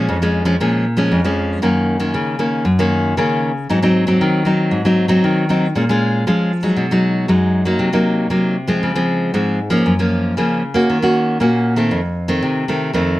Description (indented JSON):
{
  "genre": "samba",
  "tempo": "117 BPM",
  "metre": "4/4",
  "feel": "straight",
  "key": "Bb minor from 5.7 s",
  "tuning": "A4 = 440 Hz",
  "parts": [
    { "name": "nylon-string guitar", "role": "solo", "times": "0.0-13.2 s", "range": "F2 to Gb4", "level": "-14 LUFS", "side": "equal", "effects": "none" }
  ],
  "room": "light reverb",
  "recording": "none",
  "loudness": "-14 LUFS",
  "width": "side -16 dB against mid",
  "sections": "0.0-5.7 A section; 5.7-13.2 B section",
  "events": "none",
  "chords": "0.0 Bbm7; 1.6 Gb6; 3.7 Ab7; 5.7 Bbm7; 6.8 B6; 7.8 Cm7b5; 8.8 Dbmaj7; 9.9 Gbmaj7; 10.9 Ebm7; 11.9 F7",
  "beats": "0.09 0.60 1.11 | 1.63 2.14 2.66 3.17 | 3.69 4.20 4.72 5.23 | 5.75 6.26 6.78 7.29 | 7.80 8.32 8.83 9.35 | 9.86 10.37 10.89 11.40 | 11.91 12.43 12.94"
}